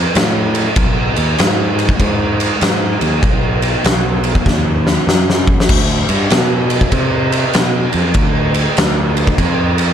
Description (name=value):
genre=stoner and doom metal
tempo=98 BPM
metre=4/4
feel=swing 64% on 8ths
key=unclear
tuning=A4 = 440 Hz
part: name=fuzz picked electric bass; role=bass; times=0.0-9.9 s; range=B1 to C3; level=-17 LUFS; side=equal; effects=overdrive
part: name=oversized low-tuned drum kit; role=drums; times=0.2-9.9 s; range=crash cymbal, kick drum, ride cymbal, snare drum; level=-14 LUFS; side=equal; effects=none
room=light reverb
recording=dark, warm production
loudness=-12 LUFS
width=side -9 dB against mid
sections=0.0-5.7 A section; 5.7-9.9 A section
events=drum fill 4.5-5.7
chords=none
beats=0.15 | 0.77 1.38 2.00 2.61 | 3.23 3.84 4.46 5.08 | 5.69 6.31 6.92 7.54 | 8.15 8.77 9.38